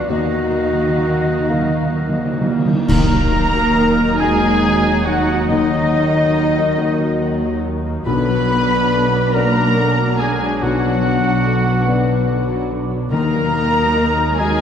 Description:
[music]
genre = cinematic, emotional film score for orchestra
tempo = 42-49 BPM (dotted quarters)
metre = 6/8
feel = rubato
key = Eb harmonic minor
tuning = A4 = 439 Hz
[part]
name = muted studio violin section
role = melody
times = 0.0-14.6 s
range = Eb5 to B5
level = -25 LUFS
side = left 3 dB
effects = none
[part]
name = muted studio violin section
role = second line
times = 0.0-14.6 s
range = Eb4 to B4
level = -26 LUFS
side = left 1 dB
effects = none
[part]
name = warm oboe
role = second line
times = 0.0-14.6 s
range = Eb4 to B4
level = -26 LUFS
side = right 2 dB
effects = none
[part]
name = felt-muted upright piano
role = accompaniment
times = 0.0-14.6 s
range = B1 to F5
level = -22 LUFS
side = left 4 dB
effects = none
[part]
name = muted symphonic viola section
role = accompaniment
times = 0.0-14.6 s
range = D3 to Eb4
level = -26 LUFS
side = right 2 dB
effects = none
[part]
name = mellow French horn section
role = sustained chords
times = 0.0-14.6 s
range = Gb3 to Gb4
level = -25 LUFS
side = left 2 dB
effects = none
[part]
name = concert harp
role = arpeggios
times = 0.0-14.6 s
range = B2 to Eb6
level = -27 LUFS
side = left 6 dB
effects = none
[part]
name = muted symphonic cello section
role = bass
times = 0.0-14.6 s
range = Eb3 to B3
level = -23 LUFS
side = right 2 dB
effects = none
[part]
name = muted symphonic double bass section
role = bass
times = 0.0-14.6 s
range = B1 to Eb2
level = -23 LUFS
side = right 3 dB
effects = none
[part]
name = small flute group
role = second line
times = 0.1-14.6 s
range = Eb5 to B5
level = -24 LUFS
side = left 1 dB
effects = none
[part]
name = cymbal swell, clash cymbals and concert bass drum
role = percussion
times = 0.1-4.6 s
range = none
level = -22 LUFS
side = right 1 dB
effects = none
[part]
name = timpani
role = percussion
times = 0.1-2.8, 13.1-14.3 s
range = Eb3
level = -22 LUFS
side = right 2 dB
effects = none
[sound]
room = wet concert hall reverb, RT60 2.5 s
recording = dark, warm production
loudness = -14 LUFS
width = side -8 dB against mid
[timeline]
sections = 0.0-2.9 A section; 2.9-14.6 B section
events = timpani fill 0.1-2.9; band accent 2.9-3.8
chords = 0.1 Ebmadd9; 2.9 Ebm; 8.1 Bm; 13.1 Ebm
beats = | 0.09 1.49 | 2.88 4.20 | 5.49 6.78 | 8.06 9.34 | 10.61 11.86 | 13.11 14.38

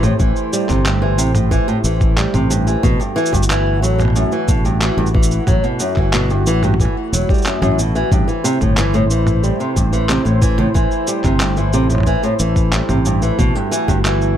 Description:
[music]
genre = folktronica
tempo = 91 BPM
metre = 4/4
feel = straight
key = A dorian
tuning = A4 = 441 Hz
[part]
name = warm analog pad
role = sustained chords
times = 0.0-14.4 s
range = A3 to C5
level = -24 LUFS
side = right 2 dB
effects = chorus, plate reverb
[part]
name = flamenco guitar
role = arpeggios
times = 0.0-14.4 s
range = F#2 to G3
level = -18 LUFS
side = equal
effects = ping-pong delay, plate reverb
[part]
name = fingered electric bass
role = bass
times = 0.0-14.4 s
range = E1 to A1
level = -17 LUFS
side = equal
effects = none
[part]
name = lo-fi sampler-style drum kit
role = drums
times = 0.0-14.3 s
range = cabasa, handclaps, toms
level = -22 LUFS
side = right 1 dB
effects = overdrive
[part]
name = electronic kick drum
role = drums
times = 0.2-14.0 s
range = none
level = -18 LUFS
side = equal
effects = overdrive
[sound]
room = light reverb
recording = none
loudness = -13 LUFS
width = side -10 dB against mid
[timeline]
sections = 0.0-14.4 A section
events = none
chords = 0.0 Am7; 2.8 Emadd9; 8.1 Am7; 13.4 Emadd9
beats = | 0.20 0.86 1.52 2.18 | 2.84 3.50 4.16 4.82 | 5.48 6.13 6.79 7.45 | 8.11 8.77 9.43 10.09 | 10.75 11.41 12.07 12.73 | 13.39 14.05

